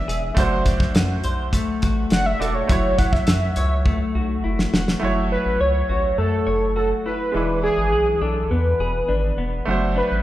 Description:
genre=indie pop, bedroom pop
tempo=103 BPM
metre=4/4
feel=straight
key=F# minor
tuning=A4 = 440 Hz
part: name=warm velvety synth lead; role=melody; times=0.0-10.2 s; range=G#4 to F#5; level=-22 LUFS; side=equal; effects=chorus
part: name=bright upright piano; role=accompaniment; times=0.0-10.2 s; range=G#3 to C#5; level=-28 LUFS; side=right 3 dB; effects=none
part: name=semi-hollow electric guitar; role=accompaniment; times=0.0-10.2 s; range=E3 to C#5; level=-26 LUFS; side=left 2 dB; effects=vibrato effect
part: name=round analog bass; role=bass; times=0.0-10.2 s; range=E1 to F#2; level=-24 LUFS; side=equal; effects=none
part: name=cloth-damped thuddy drum kit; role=drums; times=0.1-5.0 s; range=hi-hat, kick drum, snare drum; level=-21 LUFS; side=equal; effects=none
room=wet recital hall reverb, RT60 1.4 s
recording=recorded in a church or concert hall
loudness=-18 LUFS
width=side -14 dB against mid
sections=0.0-5.0 A section; 5.0-10.2 B section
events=soft synth lead solo 0.0-5.0; drum fill 3.9-5.0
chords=0.4 D7/F#; 2.7 F#m7; 7.3 E7; 9.7 D7/F#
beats=| 0.37 0.95 1.53 2.12 | 2.70 3.28 3.86 4.44 | 5.02 5.60 6.18 6.77 | 7.35 7.93 8.51 9.09 | 9.68

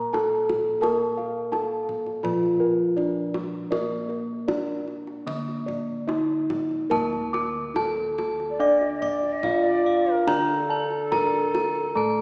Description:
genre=Javanese gamelan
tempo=71-87 BPM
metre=4/4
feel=straight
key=D pelog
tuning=A4 = 440 Hz
part: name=gamelan-type bronze metallophone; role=melody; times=0.0-12.2 s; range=Bb3 to D5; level=-25 LUFS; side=equal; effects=slapback echo
part: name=gamelan-type bronze metallophone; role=accompaniment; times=0.0-12.2 s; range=D3 to D4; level=-34 LUFS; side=equal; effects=none
part: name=gamelan-type bossed gongs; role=arpeggios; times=0.0-12.2 s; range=Bb4 to D6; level=-30 LUFS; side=equal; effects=none
part: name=gamelan-type bossed gongs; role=bass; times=0.0-12.2 s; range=D2 to Bb4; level=-34 LUFS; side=equal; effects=none
part: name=kendang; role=percussion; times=0.1-12.2 s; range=none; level=-33 LUFS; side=equal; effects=none
part: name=gamelan-type bronze metallophone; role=arpeggios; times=6.9-12.2 s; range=Bb4 to D6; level=-30 LUFS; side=equal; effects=none
part: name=breathy hollow bansuri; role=second line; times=8.5-12.2 s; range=A4 to Eb5+38c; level=-28 LUFS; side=equal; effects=none
room=wet concert hall reverb, RT60 2.0 s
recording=heard from further back in the room, small speaker sound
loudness=-22 LUFS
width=side -38 dB against mid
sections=0.0-6.9 A section; 6.9-12.2 B section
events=none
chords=none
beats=0.14 | 0.83 1.52 2.24 2.97 | 3.72 4.49 5.27 6.08 | 6.91 7.75 8.59 9.43 | 10.27 11.12 11.96

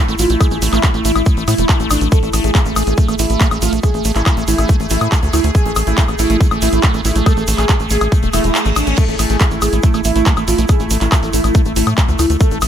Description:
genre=psychedelic trance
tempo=140 BPM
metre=4/4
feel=straight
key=unclear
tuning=A4 = 442 Hz
part: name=pulsing gated texture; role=sustained chords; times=0.0-12.7 s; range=A3 to G#4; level=-23 LUFS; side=right 1 dB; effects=chorus, built-in reverb, sidechain pumping
part: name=liquid acid bass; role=riff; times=0.0-12.7 s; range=G#3 to C#4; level=-22 LUFS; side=moving between left 6 dB and right 9 dB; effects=phaser, auto-pan, sidechain pumping, digital delay
part: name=tight sequencer bass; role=bass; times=0.1-12.7 s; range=E1 to A2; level=-18 LUFS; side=equal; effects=none
part: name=techno drum kit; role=drums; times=0.1-12.7 s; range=crash cymbal, handclaps, hi-hat, woodblock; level=-21 LUFS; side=left 1 dB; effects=none
part: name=tube shaker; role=percussion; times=0.1-12.7 s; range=none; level=-28 LUFS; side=right 3 dB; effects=none
part: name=wide unison lead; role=melody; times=0.2-12.6 s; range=D4 to A4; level=-21 LUFS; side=right 1 dB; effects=phaser, sidechain pumping, ping-pong delay
part: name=electronic kick drum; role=drums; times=0.4-12.5 s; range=none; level=-14 LUFS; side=equal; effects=none
part: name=reverse cymbal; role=sound effects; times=8.3-9.0 s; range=none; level=-28 LUFS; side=right 6 dB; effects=none
room=little or no reverb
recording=none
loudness=-12 LUFS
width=side -9 dB against mid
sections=0.0-12.7 A section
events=reverse cymbal 8.3-9.0; kick drops out 8.5-9.0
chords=0.0 A5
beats=| 0.41 0.83 1.26 1.69 | 2.12 2.55 2.98 3.41 | 3.83 4.26 4.69 5.12 | 5.55 5.98 6.41 6.83 | 7.26 7.69 8.12 8.55 | 8.98 9.41 9.83 10.26 | 10.69 11.12 11.55 11.98 | 12.41

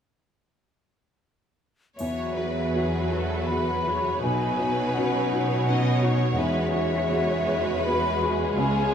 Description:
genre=cinematic, emotional film score for orchestra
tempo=82 BPM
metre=3/4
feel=rubato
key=E major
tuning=A4 = 440 Hz
part: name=rich studio violin section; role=melody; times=2.0-8.9 s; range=B4 to C#5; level=-36 LUFS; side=right 1 dB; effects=none
part: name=mellow hollow silver concert flute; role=second line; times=2.0-8.9 s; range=E5 to B5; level=-28 LUFS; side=left 2 dB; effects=none
part: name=rich studio violin section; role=second line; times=2.0-8.9 s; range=G#4 to D#5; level=-32 LUFS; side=left 1 dB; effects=none
part: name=felt-muted upright piano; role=accompaniment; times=2.0-8.9 s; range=B1 to B4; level=-29 LUFS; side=equal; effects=none
part: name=rich studio viola section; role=accompaniment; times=2.0-8.9 s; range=F#3 to F#4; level=-32 LUFS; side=right 3 dB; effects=none
part: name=rich studio cello section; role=bass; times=2.0-8.9 s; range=C#2 to B2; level=-28 LUFS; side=right 1 dB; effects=none
part: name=triangle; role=percussion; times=2.0-3.4 s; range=none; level=-50 LUFS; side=left 4 dB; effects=none
room=wet huge ambient reverb, RT60 8.6 s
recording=in a vast, echoing space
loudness=-22 LUFS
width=side -8 dB against mid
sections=2.0-8.9 A section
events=none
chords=2.0 Eadd9; 4.2 Badd9; 6.4 Eadd9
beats=| 1.98 2.72 3.48 | 4.22 4.95 5.67 | 6.38 7.10 7.85 | 8.57

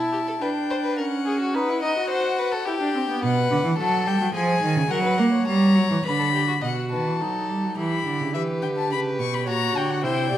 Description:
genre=classical, baroque-style fugue for string quartet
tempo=106 BPM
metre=3/4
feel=straight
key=E minor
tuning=A4 = 441 Hz
part: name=rich violin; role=melody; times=0.0-10.4 s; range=E5 to C#6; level=-27 LUFS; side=left 6 dB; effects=none
part: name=rich violin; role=second line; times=0.0-10.4 s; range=E4 to D#5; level=-28 LUFS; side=left 2 dB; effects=none
part: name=rich viola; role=accompaniment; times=0.0-3.2, 6.6-10.4 s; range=B3 to G4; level=-27 LUFS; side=right 2 dB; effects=none
part: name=dark cello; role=bass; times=3.2-10.4 s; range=A#2 to A#3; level=-23 LUFS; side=right 2 dB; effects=none
room=wet recital hall reverb, RT60 1.5 s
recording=dark, warm production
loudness=-20 LUFS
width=side -12 dB against mid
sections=0.0-6.6 A section; 6.6-10.4 B section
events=none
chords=0.0 Em; 1.0 F#5/C#; 1.5 B/D#; 2.7 Em (rootless); 3.2 B5; 4.3 C#/E#; 4.9 F#; 6.0 Bm/D; 6.6 B7; 7.8 Em; 9.5 F#/A#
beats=0.41 0.98 | 1.55 2.11 2.67 | 3.23 3.79 4.34 | 4.91 5.47 6.05 | 6.63 7.21 7.78 | 8.34 8.91 9.47 | 10.03

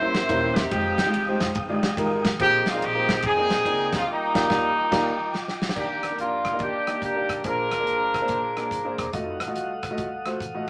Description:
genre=uptempo gospel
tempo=142 BPM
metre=4/4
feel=swing 65% on 8ths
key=Eb major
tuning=A4 = 441 Hz
part: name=clear horn section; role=melody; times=0.0-9.0 s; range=G3 to C5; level=-26 LUFS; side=equal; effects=none
part: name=dark grand piano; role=accompaniment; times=0.0-10.7 s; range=Bb2 to Eb5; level=-31 LUFS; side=equal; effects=none
part: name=mellow tonewheel organ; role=sustained chords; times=0.0-10.7 s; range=Ab3 to Eb6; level=-34 LUFS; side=equal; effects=slow rotary speaker
part: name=upright bass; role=bass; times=0.0-10.6 s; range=Eb1 to F2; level=-42 LUFS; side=equal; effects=none
part: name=natural country drum kit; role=drums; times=0.1-10.5 s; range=crash cymbal, hi-hat, kick drum, ride cymbal, rim click, snare drum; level=-31 LUFS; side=equal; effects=none
room=wet studio reverb, RT60 0.5 s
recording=none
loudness=-24 LUFS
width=mono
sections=0.0-5.8 A section; 5.8-10.7 B section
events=band accent 4.1-5.8; drum fill 5.3-5.8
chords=0.0 C7b9; 0.7 Fm9; 2.4 Bb9sus4; 4.1 Ebmaj9; 5.8 Ebmaj7; 7.4 Bb9; 9.1 F7b9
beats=0.29 | 0.71 1.14 1.55 1.98 | 2.40 2.81 3.23 3.65 | 4.08 4.50 4.92 5.34 | 5.76 6.18 6.60 7.03 | 7.45 7.87 8.29 8.72 | 9.14 9.56 9.98 10.41

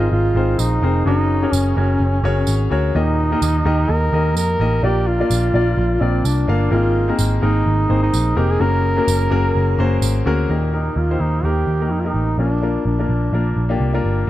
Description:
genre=piano-driven pop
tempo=127 BPM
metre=4/4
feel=swing 56% on 16ths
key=unclear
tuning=A4 = 440 Hz
part: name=mellow duduk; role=melody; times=0.0-13.8 s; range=C4 to Bb4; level=-22 LUFS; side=right 1 dB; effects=none
part: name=clear baby grand piano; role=accompaniment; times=0.0-14.3 s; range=Bb2 to F5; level=-22 LUFS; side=left 4 dB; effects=none
part: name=vintage muted picked electric bass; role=bass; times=0.0-14.3 s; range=F1 to F2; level=-18 LUFS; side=equal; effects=none
part: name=tambourine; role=percussion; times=0.6-10.1 s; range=none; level=-30 LUFS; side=right 10 dB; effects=none
room=light reverb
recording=dark, warm production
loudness=-15 LUFS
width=side -14 dB against mid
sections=0.0-10.5 A section; 10.5-14.3 B section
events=none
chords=0.0 Abadd9; 1.1 Gbadd9; 2.9 Eb; 4.8 Bb; 6.7 Abadd9; 8.6 Gbadd9; 10.5 Eb; 12.4 Bb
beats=0.12 0.59 | 1.06 1.53 2.00 2.48 | 2.95 3.42 3.89 4.36 | 4.83 5.30 5.78 6.25 | 6.72 7.19 7.66 8.13 | 8.60 9.08 9.55 10.02 | 10.49 10.96 11.44 11.91 | 12.38 12.86 13.33 13.80 | 14.28

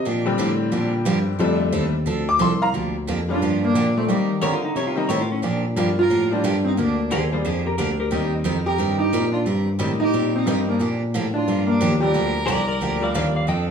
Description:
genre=country, western swing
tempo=179 BPM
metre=4/4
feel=swing 63% on 8ths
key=Bb major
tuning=A4 = 440 Hz
part: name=tack piano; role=accompaniment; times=0.0-13.5 s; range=D3 to D6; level=-25 LUFS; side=left 4 dB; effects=none
part: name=barky tine electric piano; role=bass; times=0.0-13.7 s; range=C2 to Eb3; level=-24 LUFS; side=equal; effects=overdrive, phaser
part: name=picked steel-string acoustic guitar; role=accompaniment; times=0.1-13.7 s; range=D3 to Bb4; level=-26 LUFS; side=right 5 dB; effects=none
part: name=hollow-body jazz guitar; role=melody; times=3.3-13.1 s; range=G3 to G4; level=-22 LUFS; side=equal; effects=none
part: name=clear fiddle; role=second line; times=3.3-13.1 s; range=Bb3 to Bb4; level=-30 LUFS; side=right 2 dB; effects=none
part: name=pedal steel guitar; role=second line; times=4.4-8.3, 12.5-13.7 s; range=Db4 to G5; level=-25 LUFS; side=left 3 dB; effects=none
room=light reverb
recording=studio reverb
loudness=-19 LUFS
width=side -7 dB against mid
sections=0.0-2.7 A section; 2.7-13.7 B section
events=honky-tonk piano solo 0.0-2.7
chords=0.1 Bb6; 1.4 F6; 2.7 Bb6; 4.1 Eb6; 5.4 Bb6; 8.1 Eb6; 10.8 Bb6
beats=| 0.06 0.39 0.72 1.06 | 1.40 1.73 2.07 2.40 | 2.74 3.08 3.41 3.75 | 4.08 4.42 4.76 5.09 | 5.43 5.77 6.10 6.44 | 6.77 7.11 7.45 7.78 | 8.12 8.45 8.79 9.13 | 9.46 9.80 10.13 10.47 | 10.80 11.14 11.47 11.81 | 12.14 12.48 12.81 13.15 | 13.48

